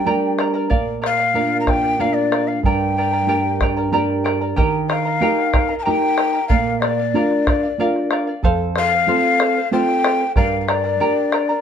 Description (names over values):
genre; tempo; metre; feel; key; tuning
andean folk, Andean ensemble; 93 BPM; 3/4; straight; G minor; A4 = 439 Hz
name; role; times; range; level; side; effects
breathy hollow large quena; melody; 0.0-11.6 s; D5 to Bb5; -20 LUFS; left 4 dB; plate reverb
charango; accompaniment; 0.0-11.6 s; G4 to Bb5; -23 LUFS; right 3 dB; none
nylon-string guitar; accompaniment; 0.0-11.5 s; F2 to Bb4; -21 LUFS; right 2 dB; none
bombo; percussion; 0.4-11.6 s; none; -21 LUFS; equal; none
room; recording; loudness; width
moderate small room reverb, RT60 0.6 s; dark, warm production; -16 LUFS; side -8 dB against mid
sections
0.0-4.6 A section; 4.6-11.6 B section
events
none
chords
0.0 Gm; 0.7 Bb; 2.6 Gm; 4.6 Eb; 6.5 Bb; 8.4 F; 10.4 Gm